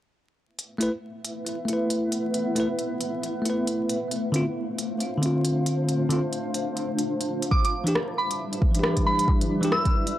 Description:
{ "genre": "future garage", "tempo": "136 BPM", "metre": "4/4", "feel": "swing 60% on 16ths", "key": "A minor", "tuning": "A4 = 445 Hz", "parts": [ { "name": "granular cloud pad", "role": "sustained chords", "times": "1.1-10.2 s", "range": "G3 to F5", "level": "-29 LUFS", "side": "equal", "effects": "built-in reverb, sidechain pumping" }, { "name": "organic electronic drum kit", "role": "drums", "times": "0.6-10.1 s", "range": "hi-hat, rim click", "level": "-30 LUFS", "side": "equal", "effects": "none" }, { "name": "bell-like tine electric piano", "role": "accompaniment", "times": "0.8-9.7 s", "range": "D3 to B4", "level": "-27 LUFS", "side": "equal", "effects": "sidechain pumping, tape echo" }, { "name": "soft synth bell", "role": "melody", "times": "7.5-10.2 s", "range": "B5 to E6", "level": "-27 LUFS", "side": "right 1 dB", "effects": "chorus, phaser, tape echo" }, { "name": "electronic kick drum", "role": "drums", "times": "7.5-9.9 s", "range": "none", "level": "-23 LUFS", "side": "equal", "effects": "none" } ], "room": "little or no reverb", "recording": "dry, gritty hardware recording, vinyl crackle", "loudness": "-23 LUFS", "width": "side -13 dB against mid", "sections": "0.5-10.2 A section", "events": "none", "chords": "0.5 Asus2; 4.0 Dm7; 7.5 Em7" }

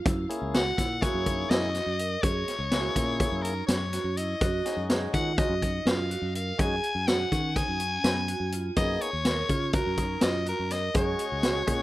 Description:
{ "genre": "progressive instrumental, band music in an uneven meter", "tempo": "248 BPM (eighths)", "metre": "9/8", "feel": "straight", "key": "F# major", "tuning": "A4 = 440 Hz", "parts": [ { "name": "vibraphone with medium mallets", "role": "arpeggios", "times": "0.1-11.8 s", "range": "B3 to A#4", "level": "-34 LUFS", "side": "right 4 dB", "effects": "tape echo" }, { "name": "fingered electric bass", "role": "bass", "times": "0.1-11.8 s", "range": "C#2 to D#3", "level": "-32 LUFS", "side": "equal", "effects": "none" }, { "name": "vintage drum kit", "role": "drums", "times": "0.1-11.8 s", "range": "hi-hat, kick drum, snare drum", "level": "-28 LUFS", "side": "equal", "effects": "none" }, { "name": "tonewheel organ", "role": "accompaniment", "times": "0.3-11.8 s", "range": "G#3 to G#4", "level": "-34 LUFS", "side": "left 2 dB", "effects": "overdrive" }, { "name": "raspy soprano saxophone", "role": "melody", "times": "0.6-11.8 s", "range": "A#4 to G#5", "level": "-31 LUFS", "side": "left 2 dB", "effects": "tape echo" } ], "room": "studio reverb", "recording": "rough home demo mix", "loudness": "-25 LUFS", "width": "side -16 dB against mid", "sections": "0.0-11.8 A section", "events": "none", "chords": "0.1 F#7; 4.4 B6/F# (rootless); 8.8 G#madd9; 10.9 F#sus2" }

